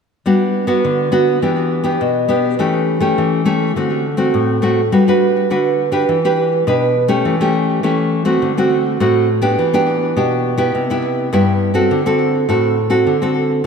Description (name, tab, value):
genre	samba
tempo	103 BPM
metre	4/4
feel	straight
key	G major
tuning	A4 = 440 Hz
part	nylon-string guitar	solo	0.3-13.7 s	G2 to B4	-13 LUFS	equal	ping-pong delay
room	wet lush hall reverb, RT60 2.2 s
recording	dreamy mix soaked in reverb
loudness	-13 LUFS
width	side -6 dB against mid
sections	0.3-4.9 A section; 4.9-13.7 B section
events	none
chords	0.3 Gmaj7; 1.4 Em7; 2.6 A7/E; 3.8 D7; 4.9 Gmaj7; 6.1 Em7; 7.3 A7/E; 8.4 D7; 9.6 Em7; 10.7 Cmaj7; 11.9 D7